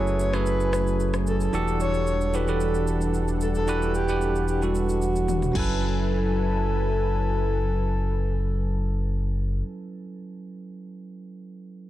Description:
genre	amapiano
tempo	112 BPM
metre	4/4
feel	straight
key	F# minor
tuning	A4 = 441 Hz
part	breathy flute-like synth lead	melody	0.0-9.6 s	F#4 to C#5	-29 LUFS	left 1 dB	chorus, tremolo, tape echo
part	barky tine electric piano	accompaniment	0.0-11.9 s	E3 to G#5	-29 LUFS	right 5 dB	none
part	warm analog pad	sustained chords	0.0-9.6 s	E3 to G#5	-33 LUFS	left 3 dB	chorus
part	sub bass with octave	bass	0.0-9.6 s	E1 to F#1	-26 LUFS	equal	none
part	deep house drum kit	drums	0.1-5.7 s	crash cymbal, kick drum, rim click, shaker, toms	-34 LUFS	left 2 dB	vintage 12-bit sampler grit
room	digital ambience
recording	none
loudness	-22 LUFS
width	side -14 dB against mid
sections	0.0-5.8 A section; 5.8-10.1 B section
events	drum fill 5.3-5.8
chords	0.0 F#m11; 1.5 Em11; 5.5 F#m11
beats	0.46 0.99 | 1.53 2.07 2.60 3.14 | 3.67 4.21 4.75 5.28 | 5.82 6.35 6.89 7.42 | 7.96 8.49 9.03 9.57

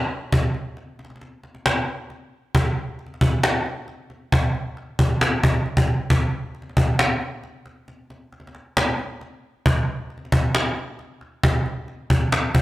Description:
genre	hip hop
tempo	135 BPM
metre	4/4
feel	half-time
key	none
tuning	none
part	cajon	drums	0.3-12.6 s	none	-19 LUFS	equal	none
room	light reverb, studio reverb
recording	transformer saturation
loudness	-20 LUFS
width	side -17 dB against mid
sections	0.0-2.5 A section; 2.5-12.6 B section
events	break 0.8-2.5, 7.9-9.7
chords	none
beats	0.32 | 0.77 1.21 1.66 2.10 | 2.55 2.99 3.44 3.88 | 4.32 4.77 5.21 5.66 | 6.10 6.55 6.99 7.43 | 7.88 8.32 8.77 9.21 | 9.66 10.10 10.55 10.99 | 11.44 11.88 12.32

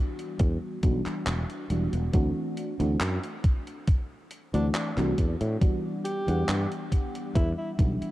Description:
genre	vaporwave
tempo	69 BPM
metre	4/4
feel	straight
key	E minor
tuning	A4 = 439 Hz
part	mellow FM electric piano	accompaniment	0.0-8.1 s	E3 to F#5	-31 LUFS	equal	wide subtle chorus, tape echo
part	gated 80s digital drum machine	drums	0.2-8.1 s	handclaps, hi-hat	-36 LUFS	equal	gated reverb, overdrive
part	sustaining fretless electric bass	bass	0.4-8.0 s	E1 to A2	-28 LUFS	equal	none
part	electronic kick drum	drums	0.4-8.0 s	none	-24 LUFS	equal	overdrive
part	clear alto saxophone	melody	4.5-7.7 s	D4 to G4	-35 LUFS	right 1 dB	tape echo
room	light reverb, digital ambience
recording	dark, warm production, cassette tape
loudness	-25 LUFS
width	side -16 dB against mid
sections	0.0-8.1 A section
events	none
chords	0.0 Em9; 2.1 D9; 5.2 Em9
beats	0.40 1.27 | 2.14 3.01 3.88 4.75 | 5.61 6.48 7.35

